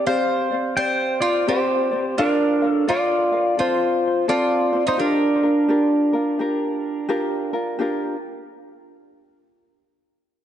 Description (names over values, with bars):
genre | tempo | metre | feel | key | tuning
Hawaiian | 86 BPM | 4/4 | swing 64% on 8ths | Bb major | A4 = 440 Hz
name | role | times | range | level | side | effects
pedal steel guitar | melody | 0.0-7.1 s | D4 to G5 | -20 LUFS | equal | ping-pong delay
mandolin | second line | 0.0-7.1 s | D4 to C5 | -26 LUFS | right 2 dB | none
ukulele | accompaniment | 0.0-8.2 s | C4 to F5 | -25 LUFS | left 1 dB | none
room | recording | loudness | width
wet lush hall reverb, RT60 2.4 s | dreamy mix soaked in reverb, nothing above 10.8 kHz | -18 LUFS | side -10 dB against mid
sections
0.0-7.8 A section; 7.8-10.4 B section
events
none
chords
0.0 Csus2; 2.2 Bb; 3.6 F; 5.0 Bb6